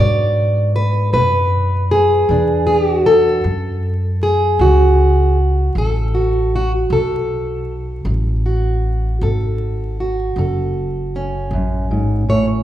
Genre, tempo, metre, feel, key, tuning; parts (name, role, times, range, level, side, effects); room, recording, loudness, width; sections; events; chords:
acoustic country blues, solo or duo; 52 BPM (dotted quarters); 12/8; straight; F# minor; A4 = 441 Hz
fingerpicked plugged-in steel-string acoustic guitar; melody; 0.0-12.6 s; F#2 to D5; -16 LUFS; equal
upright bass; bass; 0.0-12.6 s; F#1 to G#2; -18 LUFS; equal
wet large studio reverb, RT60 1.4 s; band playing live in one room, vinyl crackle; -14 LUFS; side -12 dB against mid
0.0-12.6 A section
0.0 Bm; 3.4 F#m